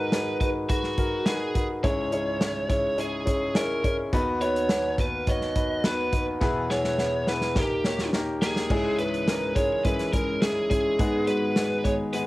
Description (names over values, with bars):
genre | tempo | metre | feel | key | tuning
piano-driven pop | 105 BPM | 4/4 | straight | unclear | A4 = 440 Hz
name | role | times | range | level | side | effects
biting lead guitar | melody | 0.0-12.2 s | F#4 to D#5 | -28 LUFS | right 1 dB | overdrive, cassette tape, plate reverb
warm concert grand piano | accompaniment | 0.0-12.3 s | C#2 to C#5 | -27 LUFS | left 1 dB | plate reverb
natural country drum kit | drums | 0.1-12.3 s | crash cymbal, hi-hat, kick drum, snare drum | -28 LUFS | equal | cassette tape
airy breathy pad | sustained chords | 8.7-12.3 s | D#3 to C#5 | -38 LUFS | right 1 dB | none
room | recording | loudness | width
moderate studio reverb, RT60 0.6 s | home recording on cassette | -23 LUFS | side -18 dB against mid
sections
0.0-8.7 A section; 8.7-12.3 B section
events
drum fill 6.4-8.7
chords
0.0 G#m7; 1.8 C#m; 4.1 B/D#; 6.4 E; 7.6 D#; 8.7 C#m; 11.0 G#m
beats
0.12 0.69 1.26 | 1.84 2.41 2.98 3.55 | 4.13 4.70 5.27 5.84 | 6.42 6.99 7.56 8.13 | 8.70 9.28 9.85 10.42 | 10.99 11.57 12.14